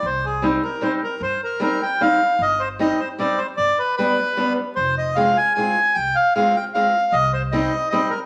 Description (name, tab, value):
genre	alpine folk, alpine dance band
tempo	152 BPM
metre	3/4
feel	straight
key	C minor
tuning	A4 = 442 Hz
part	accordion	melody	0.0-8.2 s	Ab4 to Ab5	-21 LUFS	equal	none
part	upright bass	bass	0.0-7.6 s	F1 to G2	-32 LUFS	equal	none
part	picked old ladder-braced acoustic guitar	accompaniment	0.4-8.1 s	G3 to F4	-25 LUFS	equal	none
room	wet large studio reverb, RT60 1.1 s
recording	vinyl crackle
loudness	-20 LUFS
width	mono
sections	0.0-8.3 A section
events	none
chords	0.0 Cm; 2.4 Cm/G; 3.6 G; 4.8 Fm; 7.1 Cm